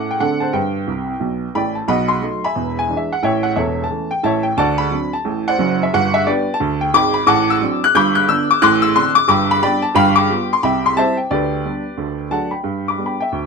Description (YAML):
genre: jazz, stride piano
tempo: 178 BPM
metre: 4/4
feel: swing 59% on 8ths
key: G major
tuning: A4 = 440 Hz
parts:
  - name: clear upright piano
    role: solo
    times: 0.0-13.5 s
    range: E1 to G6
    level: -15 LUFS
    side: equal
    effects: none
room: light reverb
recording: close, detailed microphones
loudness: -15 LUFS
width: side -4 dB against mid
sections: 0.0-1.9 A section; 1.9-12.6 B section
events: upright piano fill 0.9-1.9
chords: 0.2 D7; 0.5 G; 1.9 B7; 2.6 E7; 3.2 A; 4.6 D7; 5.9 G; 7.3 D7/A; 7.9 G; 8.6 D5/A; 9.3 G; 10.0 G7; 10.6 C; 11.3 G/D; 12.0 D; 12.6 G